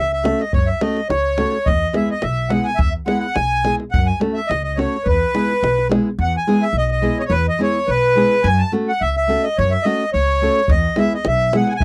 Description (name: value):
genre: balkan folk, Balkan wedding band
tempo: 106 BPM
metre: 2/4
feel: straight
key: E major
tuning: A4 = 440 Hz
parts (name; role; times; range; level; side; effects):
- accordion; melody; 0.0-11.8 s; B4 to A5; -22 LUFS; equal; none
- accordion; second line; 0.0-11.8 s; B4 to A5; -28 LUFS; equal; none
- upright bass; bass; 0.0-11.8 s; B1 to F#2; -23 LUFS; equal; none
- nylon-string guitar; accompaniment; 0.2-11.7 s; G#3 to A4; -22 LUFS; equal; none
- davul; percussion; 0.3-6.0, 10.7-11.8 s; none; -24 LUFS; equal; none
room: light reverb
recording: dry, close 1970s-style studio recording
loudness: -18 LUFS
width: mono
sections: 0.0-6.2 A section; 6.2-11.8 A section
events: none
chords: 0.0 F#m; 1.7 E; 3.9 F#m; 5.1 E; 8.4 F#m; 10.7 E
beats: | 0.53 1.10 | 1.66 2.23 | 2.80 3.36 | 3.93 4.49 | 5.06 5.62 | 6.19 6.75 | 7.32 7.88 | 8.45 9.01 | 9.57 10.14 | 10.70 11.26 | 11.82